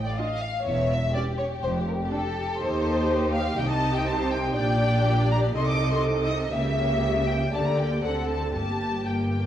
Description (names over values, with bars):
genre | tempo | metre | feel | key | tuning
quick classical-period movement for string orchestra | 122 BPM | 4/4 | straight | G minor | A4 = 440 Hz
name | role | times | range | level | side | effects
warm symphonic violin section | second line | 0.0-9.5 s | G4 to G5 | -31 LUFS | left 1 dB | none
rich studio double bass section | bass | 0.0-9.5 s | E1 to Eb2 | -29 LUFS | right 1 dB | none
rich symphonic cello section | bass | 0.0-9.5 s | Eb2 to D3 | -29 LUFS | right 1 dB | none
rich symphonic violin section | melody | 0.1-9.5 s | A4 to Eb6 | -29 LUFS | left 2 dB | none
rich symphonic viola section | accompaniment | 0.2-9.5 s | A#3 to A4 | -29 LUFS | right 1 dB | none
room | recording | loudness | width
wet recital hall reverb, RT60 1.4 s | worn, warbling old tape, cassette tape, vinyl crackle, warbly pitch drift | -22 LUFS | side -10 dB against mid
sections
0.0-9.5 A section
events
none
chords
0.0 Dm; 0.7 C#dim/E; 1.6 Dm/F (rootless); 2.6 Cm/Eb; 3.6 Cm; 4.6 Gm/Bb; 5.6 Adim/C; 6.5 C#dim7; 7.5 Gm/D; 8.0 D7; 8.5 Gm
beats
0.17 | 0.66 1.15 1.64 2.12 | 2.61 3.10 3.59 4.08 | 4.57 5.06 5.56 6.05 | 6.54 7.04 7.54 8.04 | 8.55 9.06